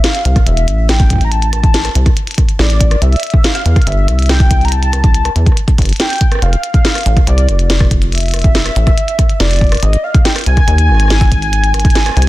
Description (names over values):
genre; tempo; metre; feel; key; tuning
IDM; 141 BPM; 4/4; straight; unclear; A4 = 440 Hz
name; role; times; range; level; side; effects
warm velvety synth lead; melody; 0.0-12.3 s; D5 to Bb5; -19 LUFS; left 1 dB; chorus, digital delay
glitchy drum kit; drums; 0.0-12.3 s; hi-hat, rim click, snare drum; -18 LUFS; equal; none
deep acid bass; bass; 0.3-12.3 s; E1 to E2; -12 LUFS; equal; none
electronic kick drum; drums; 0.4-11.9 s; none; -11 LUFS; equal; none
room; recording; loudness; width
little or no reverb; dense, heavily limited modern master; -9 LUFS; side -17 dB against mid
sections
0.0-12.3 A section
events
none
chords
0.0 A5; 3.0 C; 6.4 Fmaj7(no3); 9.8 N.C.